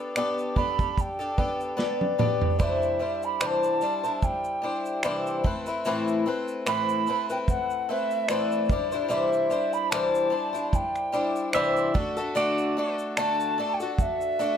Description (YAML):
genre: acoustic pop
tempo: 74 BPM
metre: 4/4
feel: swing 55% on 16ths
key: unclear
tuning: A4 = 441 Hz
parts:
  - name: picked twelve-string acoustic guitar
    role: accompaniment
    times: 0.0-14.6 s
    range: A2 to C5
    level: -27 LUFS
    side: left 2 dB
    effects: none
  - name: modern studio drum kit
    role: drums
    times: 0.2-14.6 s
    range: finger snaps, kick drum, shaker, snare drum, toms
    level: -27 LUFS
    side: right 2 dB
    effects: none
  - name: alto ocarina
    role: melody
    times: 0.6-14.6 s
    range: D5 to B5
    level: -28 LUFS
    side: right 1 dB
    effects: none
  - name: pedal steel guitar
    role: second line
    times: 11.5-13.0 s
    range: D5 to E5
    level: -30 LUFS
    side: right 5 dB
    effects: none
room: light reverb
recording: close, detailed microphones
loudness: -24 LUFS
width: side -8 dB against mid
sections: 0.0-2.6 A section; 2.6-14.6 B section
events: drum fill 1.8-2.6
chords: 0.0 Gadd9/B; 2.6 Cadd9; 5.4 Amadd9; 8.7 Cadd9; 12.0 D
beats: 0.16 0.97 1.78 | 2.60 3.41 4.22 5.04 | 5.85 6.67 7.48 8.29 | 9.11 9.92 10.73 11.55 | 12.36 13.17 13.99